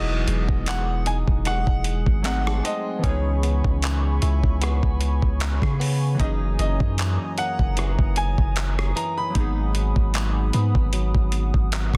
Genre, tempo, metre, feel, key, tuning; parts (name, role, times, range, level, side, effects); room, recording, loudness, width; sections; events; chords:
contemporary R&B; 76 BPM; 4/4; swing 54% on 16ths; G# minor; A4 = 440 Hz
warm baby grand piano; melody; 0.0-10.7 s; C#5 to B5; -32 LUFS; equal; tape echo
warm analog keys; accompaniment; 0.0-12.0 s; E3 to G#4; -36 LUFS; equal; chorus
hollow soft pad; sustained chords; 0.0-12.0 s; C#5 to D#6; -38 LUFS; equal; chorus, sidechain pumping
direct-recorded clean electric guitar; arpeggios; 0.0-12.0 s; F#2 to G#4; -35 LUFS; equal; warbly pitch drift, tape echo
long sustained 808-style bass; bass; 0.0-12.0 s; E1 to C#3; -25 LUFS; equal
dusty soul sampler-style drum kit; drums; 0.3-12.0 s; handclaps, hi-hat, kick drum, rim click; -27 LUFS; equal; soft clipping on snare
digital ambience; dense, heavily limited modern master; -22 LUFS; mono
0.0-12.0 A section
0.0 Emaj9; 2.2 G#7b9; 3.0 C#m7; 6.2 F#13; 9.4 G#m7